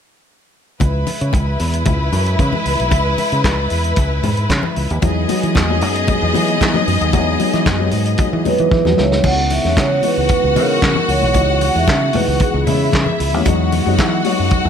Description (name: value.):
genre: disco.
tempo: 114 BPM.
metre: 4/4.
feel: straight.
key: C# minor.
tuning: A4 = 441 Hz.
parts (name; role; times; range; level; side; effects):
rich studio string section; second line; 0.8-14.7 s; G#3 to F#5; -20 LUFS; left 1 dB; tape echo.
fingered electric bass; bass; 0.8-14.7 s; B1 to E3; -19 LUFS; equal; none.
warm soul drum kit; drums; 0.8-14.6 s; crash cymbal, handclaps, hi-hat, kick drum, snare drum; -19 LUFS; equal; none.
congas; percussion; 0.8-14.6 s; none; -26 LUFS; left 4 dB; none.
dark concert grand piano; accompaniment; 5.0-14.7 s; E3 to E5; -20 LUFS; left 5 dB; none.
vibraphone with soft mallets; melody; 8.5-13.2 s; G#4 to F#5; -18 LUFS; right 5 dB; plate reverb.
room: light reverb.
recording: none.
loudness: -13 LUFS.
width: side -8 dB against mid.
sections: 0.8-9.2 A section; 9.2-14.7 B section.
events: grand piano fill 8.2-9.2; drum fill 8.7-9.2.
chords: 0.8 C#m7; 5.0 Emaj7; 9.0 C#m7; 13.5 Emaj7.